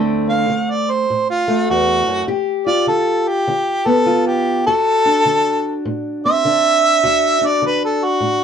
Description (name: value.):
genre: acoustic country blues, solo or duo.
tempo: 101 BPM.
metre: 4/4.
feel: swing 65% on 8ths.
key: D mixolydian.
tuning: A4 = 440 Hz.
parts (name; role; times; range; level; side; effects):
fingerpicked steel-string acoustic guitar; accompaniment; 0.0-8.4 s; D2 to G4; -19 LUFS; left 1 dB; none.
mellow harmonica; melody; 0.3-8.4 s; F4 to F5; -15 LUFS; right 1 dB; none.
room: light reverb.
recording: close, detailed microphones.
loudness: -14 LUFS.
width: side -7 dB against mid.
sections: 0.0-8.4 A section.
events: none.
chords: 0.0 D7; 2.3 G7; 4.7 D7.